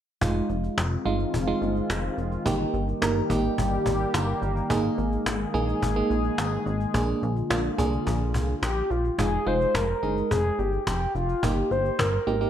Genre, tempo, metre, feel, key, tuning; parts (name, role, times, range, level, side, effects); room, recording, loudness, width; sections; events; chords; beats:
synth-pop; 107 BPM; 4/4; straight; F minor; A4 = 440 Hz
FM electric piano with tremolo; accompaniment; 0.2-12.5 s; Ab3 to Bb4; -28 LUFS; right 3 dB
sweeping resonant pad; sustained chords; 0.2-9.2 s; D3 to Ab4; -30 LUFS; left 1 dB; chorus
chorused synth bass; bass; 0.2-12.5 s; F1 to C2; -28 LUFS; equal
cajon; drums; 0.2-12.5 s; -31 LUFS; left 1 dB
mellow horn-like synth lead; melody; 8.6-12.5 s; F4 to C5; -26 LUFS; left 1 dB; chorus, digital delay
moderate plate reverb, RT60 1.3 s, digital ambience; bright 1980s-style digital production; -23 LUFS; side -10 dB against mid
0.2-9.2 A section; 9.2-12.5 B section
0.2 Fm7; 2.5 Eb/G; 4.7 Absus2; 6.9 Bb7; 9.2 Fm7; 11.4 Eb/G
| 0.21 0.78 1.34 1.90 | 2.46 3.02 3.58 4.14 | 4.70 5.26 5.82 6.38 | 6.94 7.50 8.06 8.63 | 9.19 9.75 10.31 10.87 | 11.43 11.99